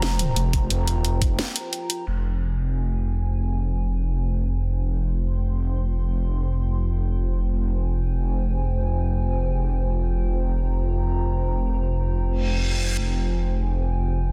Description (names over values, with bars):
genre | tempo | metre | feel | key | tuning
dark technical drum and bass | free time | none | none | F minor | A4 = 439 Hz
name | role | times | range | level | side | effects
dark analog pad | sustained chords | 0.0-14.3 s | F4 to C6 | -35 LUFS | equal | chorus, sidechain pumping
pulsing pluck wobble bass | bass | 0.0-0.7 s | F1 | -25 LUFS | equal | chorus
drum and bass drum kit | drums | 0.0-2.1 s | crash cymbal, hi-hat, snare drum | -30 LUFS | equal | low-pass filter on hats, small room ambience, low-pass filter on snare, low-pass filter on cymbals
electronic kick drum | drums | 0.5-1.3 s | none | -25 LUFS | equal | small room ambience
detuned saw bass | bass | 0.7-14.3 s | F1 | -25 LUFS | equal | chorus, overdrive, sidechain pumping
reverse cymbal | sound effects | 12.4-13.0 s | none | -32 LUFS | equal | none
room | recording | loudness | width
little or no reverb | dense, heavily limited modern master | -24 LUFS | mono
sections
0.0-2.1 A section; 2.1-14.3 B section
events
break 1.4-2.1; reverse cymbal 12.4-13.0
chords
0.0 Fsus2; 2.1 Fmadd9